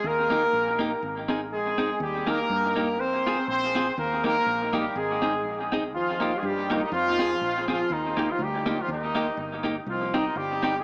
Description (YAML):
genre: ska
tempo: 122 BPM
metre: 4/4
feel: swing 56% on 8ths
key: Eb major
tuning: A4 = 440 Hz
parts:
  - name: warm horn section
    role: melody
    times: 0.0-10.8 s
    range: Eb3 to C5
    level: -28 LUFS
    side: equal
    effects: dub echo
  - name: fingered electric bass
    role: bass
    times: 0.0-10.8 s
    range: G1 to G2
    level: -39 LUFS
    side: equal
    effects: tube saturation
  - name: clean electric guitar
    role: accompaniment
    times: 0.3-10.7 s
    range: Bb3 to Ab4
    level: -32 LUFS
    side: equal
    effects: dub echo
room: wet club reverb, RT60 0.5 s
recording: small speaker sound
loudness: -26 LUFS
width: mono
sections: 0.0-9.9 A section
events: none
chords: 0.0 Eb; 1.0 Ab; 2.0 Eb; 3.0 Fm; 4.0 Eb; 4.9 Ab; 5.9 Eb; 6.9 Fm; 7.9 Eb; 9.9 Cm